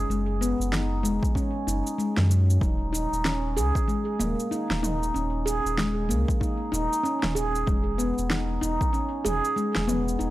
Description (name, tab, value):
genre	organic downtempo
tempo	95 BPM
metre	4/4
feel	swing 60% on 16ths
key	unclear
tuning	A4 = 441 Hz
part	warm sub bass	bass	0.0-10.3 s	D#1 to F#2	-27 LUFS	equal	sidechain pumping
part	handpan	arpeggios	0.1-10.3 s	F#3 to G#4	-26 LUFS	equal	tape echo
part	deep house drum kit	drums	0.1-10.3 s	cabasa, snare drum, toms	-31 LUFS	equal	overdrive, studio reverb
part	electronic kick drum	drums	1.2-8.9 s	none	-26 LUFS	equal	overdrive, studio reverb
room	little or no reverb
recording	dry, gritty hardware recording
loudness	-23 LUFS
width	side -16 dB against mid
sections	0.0-10.3 A section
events	filter sweep on handpan 0.0-10.3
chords	0.0 F#sus2; 2.6 D#5; 7.7 C#m/E (rootless)